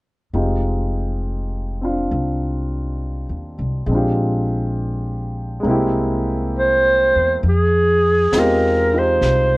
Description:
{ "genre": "jazz ballad", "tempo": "68 BPM", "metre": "4/4", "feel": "swing 68% on 8ths", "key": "F dorian", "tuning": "A4 = 440 Hz", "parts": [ { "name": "warm grand piano", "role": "accompaniment", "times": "0.3-9.6 s", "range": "Ab3 to G4", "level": "-22 LUFS", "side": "equal", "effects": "none" }, { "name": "upright bass", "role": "bass", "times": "0.3-9.6 s", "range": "F1 to F2", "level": "-21 LUFS", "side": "equal", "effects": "none" }, { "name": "warm clarinet", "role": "melody", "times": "6.6-9.6 s", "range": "Ab4 to C5", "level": "-15 LUFS", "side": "right 1 dB", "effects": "none" }, { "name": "jazz brush drum kit", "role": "drums", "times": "7.4-9.6 s", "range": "brushed snare drum, hi-hat, snare drum", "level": "-30 LUFS", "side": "left 1 dB", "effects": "none" } ], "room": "light reverb", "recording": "worn, warbling old tape, cassette tape, warbly pitch drift", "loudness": "-16 LUFS", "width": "side -22 dB against mid", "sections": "0.3-7.4 A section; 7.4-9.6 B section", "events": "none", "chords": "0.3 Fm9; 3.9 Bb13; 5.7 C7b13; 7.4 Fm9", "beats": "| 0.34 1.23 2.12 3.00 | 3.88 4.77 5.65 6.54 | 7.43 8.32 9.21" }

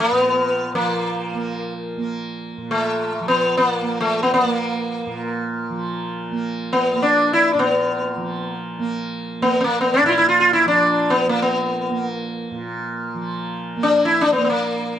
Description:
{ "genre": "indian classical, Hindustani", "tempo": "free time", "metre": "none", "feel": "none", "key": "unclear", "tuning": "A4 = 440 Hz", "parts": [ { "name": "sitar", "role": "melody", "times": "0.0-15.0 s", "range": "A3 to F4", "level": "-17 LUFS", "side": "left 1 dB", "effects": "none" }, { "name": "tanpura", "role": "drone", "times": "0.0-15.0 s", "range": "Bb2 to Bb3", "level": "-26 LUFS", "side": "right 3 dB", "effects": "none" } ], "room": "light reverb", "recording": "none", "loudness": "-18 LUFS", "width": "side -10 dB against mid", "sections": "0.0-15.0 A section", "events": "none", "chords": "none", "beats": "free time" }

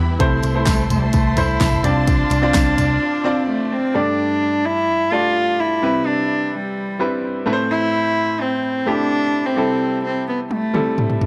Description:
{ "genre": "piano-driven pop", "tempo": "128 BPM", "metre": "4/4", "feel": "straight", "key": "C major", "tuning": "A4 = 440 Hz", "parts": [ { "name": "clear grand piano", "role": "accompaniment", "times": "0.0-11.3 s", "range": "G2 to D5", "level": "-24 LUFS", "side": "equal", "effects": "none" }, { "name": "warm studio string section", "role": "sustained chords", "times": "0.0-3.9 s", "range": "E4 to C6", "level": "-31 LUFS", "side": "equal", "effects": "none" }, { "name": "vintage muted picked electric bass", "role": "bass", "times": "0.0-3.0 s", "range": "C2 to E2", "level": "-22 LUFS", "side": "equal", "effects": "none" }, { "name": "pop drum kit", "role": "drums", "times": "0.2-2.9, 10.5-11.3 s", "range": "handclaps, hi-hat, kick drum, snare drum, toms", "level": "-23 LUFS", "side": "equal", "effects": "none" }, { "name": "tambourine", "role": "percussion", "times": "0.4-2.9 s", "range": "none", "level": "-39 LUFS", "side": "equal", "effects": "none" }, { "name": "warm cello", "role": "melody", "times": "0.7-11.2 s", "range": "G3 to F4", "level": "-22 LUFS", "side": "equal", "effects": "none" } ], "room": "light reverb, small room ambience", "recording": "none", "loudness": "-19 LUFS", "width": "mono", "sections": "0.0-3.9 A section; 3.9-11.3 B section", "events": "break 3.0-3.9; drum fill 10.5-11.3", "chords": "0.2 Am/C; 1.8 Dm7/C; 3.9 Gsus2; 5.8 Cmaj7; 7.5 Am; 9.6 C6", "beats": "| 0.20 0.67 1.14 1.61 | 2.08 2.54 3.01 3.48 | 3.95 4.42 4.89 5.36 | 5.82 6.29 6.76 7.23 | 7.70 8.17 8.63 9.10 | 9.57 10.04 10.51 10.98" }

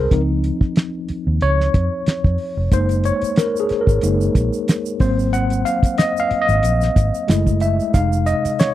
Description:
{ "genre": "lush 1970s-style soul", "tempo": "92 BPM", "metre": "4/4", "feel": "swing 54% on 16ths", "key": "Db major", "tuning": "A4 = 441 Hz", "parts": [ { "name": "tine electric piano", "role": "accompaniment", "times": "0.0-8.7 s", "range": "C3 to Gb5", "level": "-19 LUFS", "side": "left 1 dB", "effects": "overdrive, fast stereo tremolo" }, { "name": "vintage muted fingered electric bass", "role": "bass", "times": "0.0-8.5 s", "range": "F1 to F2", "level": "-19 LUFS", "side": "equal", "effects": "none" }, { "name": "cloth-damped thuddy drum kit", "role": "drums", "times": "0.1-8.7 s", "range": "hi-hat, kick drum, snare drum", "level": "-16 LUFS", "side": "equal", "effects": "none" }, { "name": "tube shaker", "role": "percussion", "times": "2.7-8.7 s", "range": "none", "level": "-37 LUFS", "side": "right 15 dB", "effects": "none" } ], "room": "little or no reverb", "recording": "dry, close 1970s-style studio recording", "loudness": "-16 LUFS", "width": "side -13 dB against mid", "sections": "0.0-8.7 A section", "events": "tine electric piano solo 0.0-8.7", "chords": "0.1 Dbmaj9; 2.7 Gb6; 5.0 Ab9; 7.3 Gbm7; 7.9 Fm7", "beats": "| 0.12 0.77 1.42 2.07 | 2.72 3.37 4.03 4.68 | 5.33 5.98 6.63 7.29 | 7.94 8.59" }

